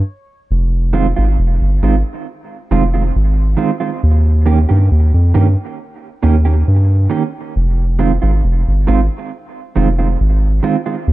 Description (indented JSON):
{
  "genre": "dub reggae",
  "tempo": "68 BPM",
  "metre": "4/4",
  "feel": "straight",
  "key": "F minor",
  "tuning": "A4 = 436 Hz",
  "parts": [
    { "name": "soft dub sub bass", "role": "bass", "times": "0.0-11.1 s", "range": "F1 to G2", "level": "-12 LUFS", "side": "equal", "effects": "none" },
    { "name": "mellow electric guitar", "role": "accompaniment", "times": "0.9-10.9 s", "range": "Eb3 to G4", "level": "-19 LUFS", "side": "right 6 dB", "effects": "tremolo, dub echo" }
  ],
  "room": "studio reverb",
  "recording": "echo-heavy mix",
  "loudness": "-12 LUFS",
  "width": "side -17 dB against mid",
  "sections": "0.5-11.1 A section",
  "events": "break 0.0-0.5",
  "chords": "0.5 Fm7; 4.0 Eb7; 7.5 Fm7",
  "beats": "| 0.49 1.37 2.25 3.14 | 4.02 4.90 5.78 6.66 | 7.54 8.43 9.31 10.19 | 11.07"
}